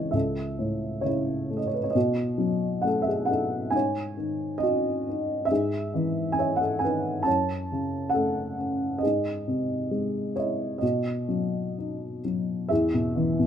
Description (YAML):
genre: classical, lyrical solo piano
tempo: 67 BPM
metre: 4/4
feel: rubato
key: unclear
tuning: A4 = 436 Hz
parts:
  - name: dark upright piano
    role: solo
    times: 0.0-13.5 s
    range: C#2 to A5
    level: -24 LUFS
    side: equal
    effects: none
room: light reverb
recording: none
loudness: -24 LUFS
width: side -9 dB against mid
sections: 0.0-12.7 A section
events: none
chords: 0.1 A/C#; 2.0 B7; 3.7 G#7sus4; 5.5 C#madd9/G#; 7.3 F#m; 9.0 G#; 10.8 B; 12.7 E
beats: 0.14 1.05 | 1.96 2.85 3.74 4.63 | 5.50 6.38 7.26 8.15 | 9.03 9.91 10.82 11.76 | 12.70